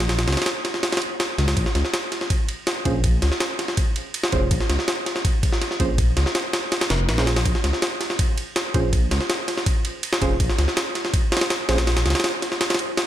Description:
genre	drum and bass, jungle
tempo	163 BPM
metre	4/4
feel	straight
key	Bb minor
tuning	A4 = 441 Hz
part	dark detuned saw bass	bass	0.0-12.1 s	F1 to Db2	-22 LUFS	equal	tube saturation
part	jungle sampler-style drum kit	drums	0.0-13.1 s	kick drum, ride cymbal, snare drum	-21 LUFS	equal	none
part	deep mellow chord stab	stabs	2.9-11.8 s	Db4 to C5	-30 LUFS	right 3 dB	chorus, dub echo
room	little or no reverb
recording	none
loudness	-20 LUFS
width	side -12 dB against mid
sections	0.0-13.1 A section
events	kick drops out 6.7-7.5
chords	0.0 Bbm7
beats	| 0.09 0.46 0.83 1.20 | 1.57 1.94 2.30 2.67 | 3.04 3.41 3.77 4.14 | 4.51 4.88 5.25 5.62 | 5.98 6.35 6.72 7.09 | 7.46 7.82 8.19 8.56 | 8.93 9.30 9.66 10.03 | 10.40 10.77 11.14 11.51 | 11.87 12.24 12.61 12.98

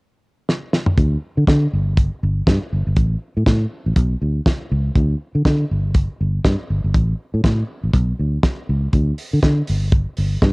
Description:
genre	disco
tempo	121 BPM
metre	4/4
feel	swing 56% on 16ths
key	unclear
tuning	A4 = 441 Hz
part	damped 70s drum kit	drums	0.5-10.5 s	hi-hat, kick drum, snare drum, toms	-17 LUFS	equal	cassette tape
part	fingered electric bass	bass	1.0-10.5 s	G1 to D3	-18 LUFS	equal	none
room	little or no reverb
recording	home recording on cassette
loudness	-16 LUFS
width	side -30 dB against mid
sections	1.0-10.5 A section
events	drum fill 0.5-1.0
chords	none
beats	0.48 | 0.98 1.48 1.98 2.47 | 2.97 3.47 3.96 4.46 | 4.96 5.45 5.95 6.45 | 6.94 7.44 7.94 8.43 | 8.93 9.43 9.92 10.42

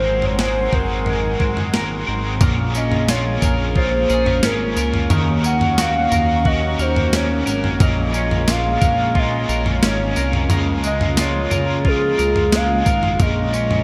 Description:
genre	dream pop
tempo	89 BPM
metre	4/4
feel	straight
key	Bb minor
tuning	A4 = 442 Hz
part	warbly nostalgic lead	melody	0.0-13.8 s	Ab4 to Gb5	-24 LUFS	equal	chorus, delay
part	overdriven semi-hollow guitar	accompaniment	0.0-13.8 s	Ab2 to Bb4	-29 LUFS	equal	harmonic tremolo, analog chorus
part	phased analog pad	sustained chords	0.0-13.8 s	Db3 to C6	-28 LUFS	equal	phaser, chorus
part	clean electric guitar	arpeggios	0.0-13.8 s	Ab2 to Bb4	-28 LUFS	equal	lush chorus, delay
part	chorused synth bass	bass	0.0-13.8 s	Ab1 to Eb2	-25 LUFS	equal	none
part	clean 12-bit digital drum machine	drums	0.2-13.8 s	kick drum, snare drum, tambourine, toms	-23 LUFS	equal	none
room	moderate plate reverb, RT60 1.6 s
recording	bright 1980s-style digital production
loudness	-18 LUFS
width	mono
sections	0.0-2.4 A section; 2.4-13.8 B section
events	none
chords	0.0 Ab9; 2.4 Bbm7; 5.1 Ebm7; 7.8 Bbm7; 10.5 Db6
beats	0.39 1.06 1.74 | 2.41 3.08 3.76 4.43 | 5.11 5.78 6.46 7.13 | 7.80 8.48 9.15 9.83 | 10.50 11.18 11.85 12.52 | 13.20

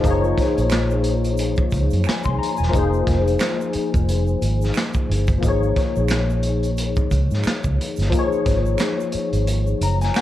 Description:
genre	R&B, neo-soul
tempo	89 BPM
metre	4/4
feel	swing 57% on 16ths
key	unclear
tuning	A4 = 437 Hz
part	electric guitar through a small old amp	second line	0.0-0.5 s	Bb3 to Eb4	-29 LUFS	right 6 dB	none
part	barky tine electric piano	accompaniment	0.0-10.2 s	F3 to C6	-22 LUFS	left 4 dB	ensemble chorus
part	vintage muted fingered electric bass	bass	0.0-10.1 s	Fb1 to Ab2	-21 LUFS	right 1 dB	none
part	crunchy breakbeat drum kit	drums	0.0-10.2 s	handclaps, hi-hat, kick drum, snare drum	-23 LUFS	right 1 dB	none
part	egg shaker and finger snaps	percussion	0.1-10.2 s	none	-37 LUFS	right 10 dB	none
room	light reverb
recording	dark, warm production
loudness	-18 LUFS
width	side -13 dB against mid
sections	0.0-10.2 A section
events	tine electric piano fill 9.5-10.2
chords	0.0 Gbmaj9#11; 2.7 Fm7; 5.4 Absus4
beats	| 0.03 0.71 1.38 2.06 | 2.73 3.40 4.08 4.75 | 5.43 6.10 6.78 7.45 | 8.12 8.80 9.47 10.15

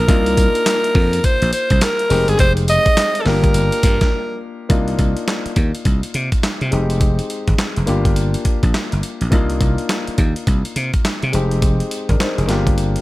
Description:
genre	R&B, new jack swing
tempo	104 BPM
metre	4/4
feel	swing 62% on 16ths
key	C minor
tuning	A4 = 440 Hz
part	raspy alto saxophone	melody	0.0-4.4 s	Ab4 to Eb5	-17 LUFS	equal	none
part	warm concert grand piano	accompaniment	0.0-13.0 s	Ab3 to C5	-24 LUFS	left 3 dB	none
part	slap bass	bass	0.0-13.0 s	F1 to C3	-18 LUFS	equal	none
part	dusty soul sampler-style drum kit	drums	0.1-13.0 s	handclaps, hi-hat, kick drum, snare drum, tambourine	-18 LUFS	equal	none
room	digital ambience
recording	none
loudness	-14 LUFS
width	side -18 dB against mid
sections	0.0-4.7 A section; 4.7-13.0 B section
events	break 4.1-4.7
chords	0.1 Cm11; 2.1 Fm9; 3.3 Gm7; 4.7 Cm11; 6.7 Fm9; 7.9 Gm7; 9.3 Cm11; 11.3 Fm9; 12.5 Gm7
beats	| 0.09 0.66 1.24 1.82 | 2.39 2.97 3.55 4.12 | 4.70 5.28 5.85 6.43 | 7.01 7.58 8.16 8.74 | 9.32 9.89 10.47 11.05 | 11.62 12.20 12.78

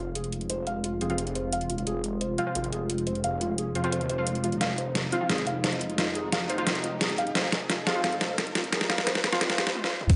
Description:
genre	dark technical drum and bass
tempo	175 BPM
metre	4/4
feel	straight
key	F minor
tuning	A4 = 439 Hz
part	sweeping resonant pad	sustained chords	0.0-10.2 s	C3 to F4	-36 LUFS	equal	chorus, sidechain pumping
part	felt-muted upright piano	arpeggios	0.0-9.7 s	F4 to F5	-35 LUFS	equal	sidechain pumping, tape echo
part	snarling distorted saw bass	bass	0.0-10.2 s	F1 to F2	-38 LUFS	equal	tube saturation, sidechain pumping
part	riser, swell and impact	sound effects	2.3-10.2 s	none	-41 LUFS	equal	none
part	dubstep drum kit	drums	0.2-10.2 s	crash cymbal, hi-hat, shaker, snare drum, toms	-30 LUFS	equal	none
part	orchestra-hit-like synth stab	stabs	1.0-9.5 s	F3 to F4	-36 LUFS	equal	built-in reverb, cassette tape, tape echo
part	electronic kick drum	drums	10.1-10.2 s	none	-18 LUFS	equal	overdrive
part	hi-hat	drums	10.1-10.2 s	none	barely audible	none	none
room	wet digital room reverb, RT60 1.3 s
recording	high-pass filter, nothing above 10.5 kHz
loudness	-28 LUFS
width	mono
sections	0.0-10.1 A section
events	build-up 0.0-10.1; filter sweep on analog synth pad 0.0-10.1; filter sweep on synth stab 0.0-10.1; filter sweep 0.0-10.1; drum fill 4.6-9.8, 9.8-10.1; swell 9.4-10.1; stop 9.8-10.1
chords	0.0 Fm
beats	0.15 | 0.50 0.84 1.18 1.52 | 1.87 2.21 2.55 2.90 | 3.24 3.58 3.92 4.27 | 4.61 4.95 5.30 5.64 | 5.98 6.33 6.67 7.01 | 7.35 7.70 8.04 8.38 | 8.72 9.07 9.41 9.75 | 10.10

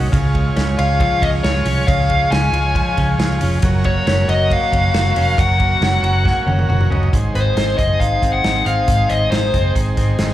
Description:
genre	jangly indie pop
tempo	137 BPM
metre	4/4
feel	straight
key	Ab mixolydian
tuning	A4 = 441 Hz
part	overdriven combo organ	accompaniment	0.0-10.3 s	Eb4 to Bb5	-25 LUFS	right 4 dB	slapback echo
part	direct-recorded clean electric guitar	arpeggios	0.0-10.3 s	Ab2 to Gb4	-24 LUFS	left 2 dB	slapback echo
part	vintage muted fingered electric bass	bass	0.0-10.3 s	F1 to Db2	-18 LUFS	right 1 dB	none
part	loose indie drum kit	drums	0.1-10.3 s	hi-hat, kick drum, ride cymbal, snare drum, toms	-20 LUFS	right 1 dB	none
part	dark smooth lead guitar	melody	0.8-9.7 s	C5 to Ab5	-19 LUFS	left 2 dB	overdrive, slapback echo
room	little or no reverb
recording	live gig heard through the venue's PA, club reverb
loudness	-14 LUFS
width	side -13 dB against mid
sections	0.0-7.1 A section; 7.1-10.3 B section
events	transistor combo organ fill 5.8-7.1; drum fill 6.3-7.1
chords	0.1 Db; 3.6 Gb; 7.1 Ab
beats	| 0.13 0.56 1.00 1.44 | 1.88 2.31 2.75 3.19 | 3.63 4.07 4.50 4.94 | 5.38 5.81 6.25 6.69 | 7.13 7.56 8.00 8.44 | 8.88 9.31 9.75 10.19

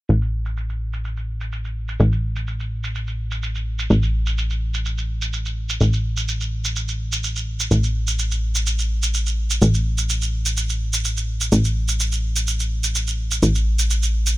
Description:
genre	progressive house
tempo	126 BPM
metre	4/4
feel	straight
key	unclear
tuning	A4 = 440 Hz
part	plucky analog bass	bass	0.1-14.4 s	A1	-20 LUFS	equal	none
part	shaker	drums	0.1-14.4 s	none	-26 LUFS	right 3 dB	low-pass filter on perc, low-pass filter on room
room	little or no reverb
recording	none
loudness	-20 LUFS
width	side -17 dB against mid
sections	0.1-14.4 A section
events	none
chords	none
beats	| 0.09 0.57 1.04 1.52 | 2.00 2.47 2.95 3.43 | 3.90 4.38 4.86 5.33 | 5.81 6.28 6.76 7.24 | 7.71 8.19 8.66 9.14 | 9.62 10.09 10.57 11.04 | 11.52 12.00 12.47 12.95 | 13.43 13.90

